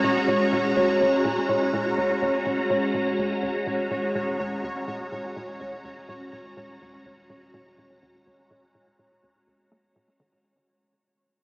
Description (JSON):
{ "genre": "ambient", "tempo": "124 BPM", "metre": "4/4", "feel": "straight", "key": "Eb minor", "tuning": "A4 = 435 Hz", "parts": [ { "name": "phased string machine", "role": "sustained chords", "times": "0.0-10.4 s", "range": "G#3 to A#5", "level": "-25 LUFS", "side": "equal", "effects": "ensemble chorus, phaser" }, { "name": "tight sequencer bass", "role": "riff", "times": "0.0-10.4 s", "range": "Eb2 to Bb3", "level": "-36 LUFS", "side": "equal", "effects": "lush chorus, analog delay" }, { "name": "round analog bass", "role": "bass", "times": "0.0-10.4 s", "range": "Eb1", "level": "-52 LUFS", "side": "equal", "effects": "none" }, { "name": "pulsing gated texture", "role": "texture", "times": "0.0-10.5 s", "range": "Db5", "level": "-27 LUFS", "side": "equal", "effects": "chorus, built-in reverb" } ], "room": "wet huge ambient reverb, RT60 8.3 s", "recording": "dreamy mix soaked in reverb, small speaker sound", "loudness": "-22 LUFS", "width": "side -30 dB against mid", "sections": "0.0-10.4 A section", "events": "fade-out 0.0-10.4; filter sweep on analog synth bass 0.0-10.4", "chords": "0.0 Ebm7" }